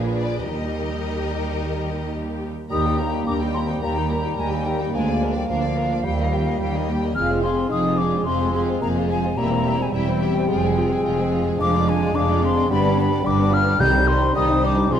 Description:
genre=classical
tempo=108 BPM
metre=4/4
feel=straight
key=Eb major, C minor from 11.6 s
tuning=A4 = 438 Hz
part: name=warm symphonic violin section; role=second line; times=0.0-15.0 s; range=B3 to D5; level=-32 LUFS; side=left 3 dB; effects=none
part: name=rich symphonic viola section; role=accompaniment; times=0.0-15.0 s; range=Eb3 to G4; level=-32 LUFS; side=right 1 dB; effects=none
part: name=rich studio cello section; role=bass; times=0.0-15.0 s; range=C2 to Bb2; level=-27 LUFS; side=right 2 dB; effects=none
part: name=warm symphonic double bass section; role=bass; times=0.0-15.0 s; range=E1 to Eb2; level=-26 LUFS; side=right 3 dB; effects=none
part: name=dark symphonic violin section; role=melody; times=0.2-15.0 s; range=Ab4 to Bb5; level=-33 LUFS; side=left 5 dB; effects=none
part: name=timpani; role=percussion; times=0.5-1.3, 13.8-15.0 s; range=C3 to Eb3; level=-29 LUFS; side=equal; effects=none
part: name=hollow concert flute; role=second line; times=2.7-15.0 s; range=F5 to G6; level=-25 LUFS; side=left 3 dB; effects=none
part: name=mellow clarinet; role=second line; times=2.7-15.0 s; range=Bb3 to F4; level=-30 LUFS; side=left 3 dB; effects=none
part: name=warm bassoon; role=accompaniment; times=2.7-15.0 s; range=F3 to Ab3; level=-28 LUFS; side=right 1 dB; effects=none
part: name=mellow French horn section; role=sustained chords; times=2.7-15.0 s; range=F3 to G4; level=-28 LUFS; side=left 5 dB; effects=none
part: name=mellow trombone section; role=sustained chords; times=2.7-15.0 s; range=C3 to Bb3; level=-29 LUFS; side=right 3 dB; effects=none
room=moderate recital hall reverb, RT60 1.4 s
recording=none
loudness=-19 LUFS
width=side -9 dB against mid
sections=0.0-2.7 A section; 2.7-15.0 B section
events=none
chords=0.4 Eb; 4.9 Bb/D; 6.1 Eb; 7.2 Fm; 9.4 C/E; 10.5 Fm; 11.6 Ddim/F; 12.7 G; 13.8 Cm

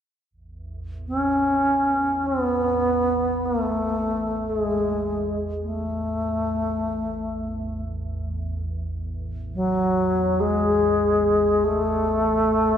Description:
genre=world meditative, free-time meditation music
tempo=free time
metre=none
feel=none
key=A major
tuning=A4 = 440 Hz
part: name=glassy FM pad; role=drone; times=0.3-12.8 s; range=A1 to E2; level=-31 LUFS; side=right 1 dB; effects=ensemble chorus, built-in reverb
part: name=bright reedy bass flute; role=melody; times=1.1-12.8 s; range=F#3 to C#4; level=-21 LUFS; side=equal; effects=tape echo
room=wet plate reverb, RT60 2.8 s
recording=dreamy mix soaked in reverb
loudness=-21 LUFS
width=side -8 dB against mid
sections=0.3-12.8 A section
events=none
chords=none

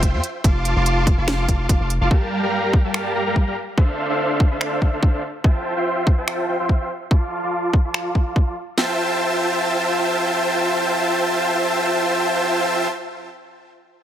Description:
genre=future bass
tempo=144 BPM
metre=4/4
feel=swing 54% on 16ths, half-time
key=F major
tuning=A4 = 441 Hz
part: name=dense compressed supersaw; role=riff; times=0.0-12.9 s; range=G3 to D6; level=-20 LUFS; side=equal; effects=sidechain pumping, low-pass filter, digital delay
part: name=long sustained 808-style bass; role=bass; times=0.0-2.1 s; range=F1 to F2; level=-21 LUFS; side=equal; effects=sidechain pumping
part: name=trap drum kit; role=drums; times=0.0-8.9 s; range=kick drum, snare drum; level=-16 LUFS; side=equal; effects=none
part: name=trap drum kit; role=drums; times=0.0-8.0 s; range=finger snaps, hi-hat, snare drum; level=-26 LUFS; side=equal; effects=none
room=light reverb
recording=none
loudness=-18 LUFS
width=side -10 dB against mid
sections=0.0-8.8 A section; 8.8-12.1 B section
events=filter sweep on supersaw synth 0.0-8.8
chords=0.2 F6; 2.1 Gm7; 3.8 Dm7; 5.2 Fmaj7; 6.9 F6; 8.8 Fmaj7

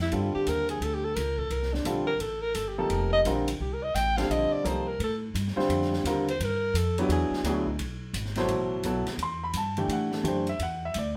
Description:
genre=modal jazz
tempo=172 BPM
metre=4/4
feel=swing 64% on 8ths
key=unclear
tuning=A4 = 441 Hz
part: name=warm alto saxophone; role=second line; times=0.0-7.8 s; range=D4 to G5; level=-31 LUFS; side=equal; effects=none
part: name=upright bass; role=bass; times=0.0-11.2 s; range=F1 to A2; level=-34 LUFS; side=equal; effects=none
part: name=open jazz drum kit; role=drums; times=0.0-11.0 s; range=hi-hat, kick drum, ride cymbal, snare drum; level=-41 LUFS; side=equal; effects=none
part: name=clear grand piano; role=accompaniment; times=0.1-11.2 s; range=B2 to C6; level=-31 LUFS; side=equal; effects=none
room=wet studio reverb, RT60 0.6 s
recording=band playing live in one room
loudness=-28 LUFS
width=mono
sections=0.0-8.5 A section; 8.5-11.2 A section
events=alto saxophone solo 0.0-8.5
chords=0.0 C9sus4; 2.9 F9sus4; 7.1 E7; 8.5 Am9

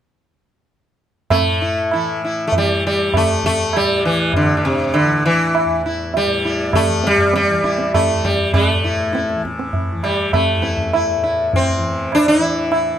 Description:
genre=indian classical, Hindustani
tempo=100 BPM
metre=3/4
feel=straight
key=E raga malkauns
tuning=A4 = 441 Hz
part: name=sitar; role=melody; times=1.3-13.0 s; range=C3 to E4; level=-16 LUFS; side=equal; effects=none
part: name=tanpura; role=drone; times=1.3-13.0 s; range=E2 to E3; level=-26 LUFS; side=left 2 dB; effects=none
part: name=tabla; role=percussion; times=1.3-12.9 s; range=none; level=-20 LUFS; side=right 2 dB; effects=none
room=light reverb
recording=close, detailed microphones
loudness=-15 LUFS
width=side -10 dB against mid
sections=1.3-13.0 A section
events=none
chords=none

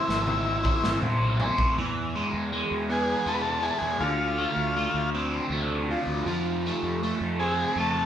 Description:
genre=psychedelic rock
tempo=53 BPM (dotted quarters)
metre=6/8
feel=straight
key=E phrygian dominant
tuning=A4 = 439 Hz
part: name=combo organ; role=melody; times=0.0-8.1 s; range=E4 to B4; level=-28 LUFS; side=left 1 dB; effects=none
part: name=biting overdriven guitar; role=riff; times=0.0-8.1 s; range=A2 to C5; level=-28 LUFS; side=equal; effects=phaser
part: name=fuzz fingered electric bass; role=bass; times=0.1-8.1 s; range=G#1 to F2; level=-31 LUFS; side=equal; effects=overdrive
part: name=raw garage drum kit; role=drums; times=0.1-1.8 s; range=kick drum, snare drum, toms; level=-28 LUFS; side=equal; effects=none
room=wet large studio reverb, RT60 1.2 s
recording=band playing live in one room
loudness=-24 LUFS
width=side -9 dB against mid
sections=0.0-1.8 A section; 1.8-8.1 B section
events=drum fill 0.0-1.8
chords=0.0 Amadd9; 1.8 E; 4.0 Dm7; 6.3 F

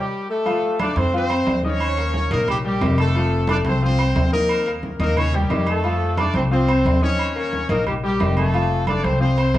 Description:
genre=latin, salsa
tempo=178 BPM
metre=4/4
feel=straight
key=unclear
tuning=A4 = 440 Hz
part: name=bright horn section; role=melody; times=0.0-9.6 s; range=G3 to D5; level=-22 LUFS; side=equal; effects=analog delay
part: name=bright concert grand piano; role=accompaniment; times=0.5-9.6 s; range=Eb3 to Eb6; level=-26 LUFS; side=left 3 dB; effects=none
part: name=agogo bells and timbales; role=percussion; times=0.5-9.6 s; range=none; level=-28 LUFS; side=right 4 dB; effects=none
part: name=congas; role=percussion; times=0.5-9.6 s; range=none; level=-28 LUFS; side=left 1 dB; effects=none
part: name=upright bass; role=bass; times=1.0-9.6 s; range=F1 to F2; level=-21 LUFS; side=equal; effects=none
room=light reverb, studio ambience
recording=echo-heavy mix, cassette tape, small room ambience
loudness=-17 LUFS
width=side -14 dB against mid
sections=0.5-9.6 A section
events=drum fill 0.0-0.5; band accent 0.0-0.5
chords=0.5 F6; 1.8 Eb7; 3.2 F; 4.5 Eb7; 5.8 F6; 7.2 Eb7; 8.5 F6

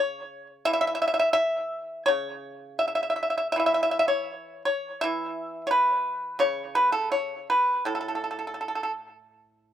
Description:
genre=chinese traditional, Chinese solo plucked strings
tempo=79-89 BPM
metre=2/4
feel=rubato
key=unclear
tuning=A4 = 440 Hz
part: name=pipa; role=solo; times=0.0-9.7 s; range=A2 to E5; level=-24 LUFS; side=equal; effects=slapback echo
room=little or no reverb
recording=recorded outdoors, with no room sound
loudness=-24 LUFS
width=side -10 dB against mid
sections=0.0-9.4 A section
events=none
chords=none

